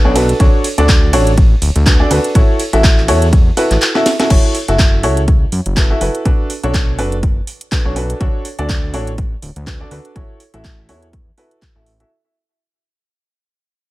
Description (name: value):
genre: piano house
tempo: 123 BPM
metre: 4/4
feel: swing 56% on 16ths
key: unclear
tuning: A4 = 440 Hz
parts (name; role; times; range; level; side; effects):
- clear upright piano; riff; 0.0-12.1 s; D4 to E5; -17 LUFS; equal; sidechain pumping, low-pass filter, digital delay
- fat analog bass; bass; 0.0-12.0 s; D1 to F#2; -16 LUFS; equal; sidechain pumping
- house drum kit; drums; 0.2-12.1 s; crash cymbal, handclaps, hi-hat, ride cymbal, snare drum; -20 LUFS; right 1 dB; studio reverb
- electronic kick drum; drums; 0.4-11.7 s; none; -12 LUFS; equal; studio reverb
room: digital ambience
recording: none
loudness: -11 LUFS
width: side -18 dB against mid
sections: 0.0-4.3 A section; 4.3-12.1 B section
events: drop 0.0-4.3; drum fill 3.9-4.3; fade-out 4.3-12.1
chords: 0.4 Dmaj7; 2.4 A6; 4.3 F#m7; 6.3 Bm7; 8.2 Dmaj7; 10.2 A6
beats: | 0.40 0.89 1.38 1.86 | 2.35 2.84 3.33 3.81 | 4.30 4.79 5.28 5.77 | 6.25 6.74 7.23 7.72 | 8.21 8.69 9.18 9.67 | 10.16 10.64 11.13 11.62